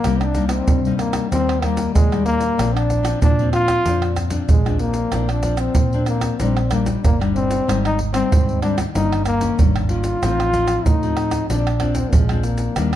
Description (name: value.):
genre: samba and choro.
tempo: 94 BPM.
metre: 4/4.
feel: straight.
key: unclear.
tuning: A4 = 440 Hz.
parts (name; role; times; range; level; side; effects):
breathy trombone; melody; 0.0-13.0 s; Ab3 to F4; -22 LUFS; left 2 dB; none.
nylon-string guitar; accompaniment; 0.0-13.0 s; G2 to Eb4; -24 LUFS; left 5 dB; none.
egg shaker, surdo, pandeiro and tamborim; percussion; 0.0-13.0 s; none; -21 LUFS; right 2 dB; none.
vintage muted fingered electric bass; bass; 0.1-13.0 s; G1 to C3; -22 LUFS; right 1 dB; none.
room: moderate large studio reverb, RT60 1.1 s.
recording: dark, warm production.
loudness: -16 LUFS.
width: side -12 dB against mid.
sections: 0.0-13.0 A section.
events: none.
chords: 0.0 Cm7; 1.3 Eb; 2.6 Bbadd9; 6.4 Ebmaj7/Bb; 7.7 Abmaj7; 8.9 Eb7/G; 10.2 F7/A; 11.5 Bbadd9.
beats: | 0.04 0.68 1.32 1.95 | 2.59 3.22 3.86 4.50 | 5.13 5.77 6.40 7.04 | 7.67 8.31 8.95 9.58 | 10.22 10.86 11.49 12.13 | 12.77.